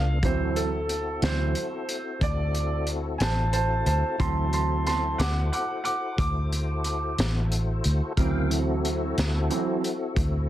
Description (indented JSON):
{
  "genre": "slow blues",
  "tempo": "60 BPM (dotted quarters)",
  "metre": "12/8",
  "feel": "straight",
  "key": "D mixolydian",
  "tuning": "A4 = 440 Hz",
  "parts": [
    { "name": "clear upright piano", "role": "accompaniment", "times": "0.0-9.8 s", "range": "E3 to D6", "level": "-28 LUFS", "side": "right 3 dB", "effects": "plate reverb" },
    { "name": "tonewheel organ", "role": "sustained chords", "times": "0.0-10.5 s", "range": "C#3 to G5", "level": "-33 LUFS", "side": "left 3 dB", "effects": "slow rotary speaker, chorus vibrato, plate reverb" },
    { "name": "vintage muted fingered electric bass", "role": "bass", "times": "0.0-10.5 s", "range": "A1 to D2", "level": "-26 LUFS", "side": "equal", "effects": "none" },
    { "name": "crunchy breakbeat drum kit", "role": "drums", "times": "0.2-10.3 s", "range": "hi-hat, kick drum, snare drum", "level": "-30 LUFS", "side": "equal", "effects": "none" }
  ],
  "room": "light reverb",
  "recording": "dense, heavily limited modern master",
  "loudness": "-24 LUFS",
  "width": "side -13 dB against mid",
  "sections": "0.0-10.5 A section",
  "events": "upright piano solo 0.0-10.5",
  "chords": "0.2 D7"
}